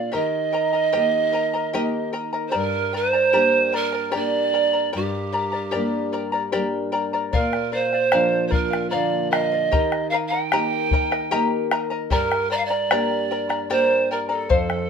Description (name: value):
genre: andean folk, Andean ensemble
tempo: 75 BPM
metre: 3/4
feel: straight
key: G minor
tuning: A4 = 440 Hz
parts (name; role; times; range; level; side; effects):
- breathy pan flute; melody; 0.0-14.9 s; G4 to G5; -21 LUFS; right 4 dB; none
- charango; accompaniment; 0.0-14.9 s; G4 to Bb5; -26 LUFS; left 4 dB; none
- nylon-string guitar; accompaniment; 0.0-14.9 s; F2 to G4; -27 LUFS; left 1 dB; none
- bombo; percussion; 7.3-14.9 s; none; -24 LUFS; left 2 dB; none
room: moderate studio reverb, RT60 0.5 s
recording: minimal, uncompressed stereo recording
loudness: -19 LUFS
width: side -6 dB against mid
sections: 0.0-7.3 A section; 7.3-14.9 A section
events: none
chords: 0.1 Eb; 2.5 Gm; 7.3 Bb; 9.7 Eb; 12.1 Gm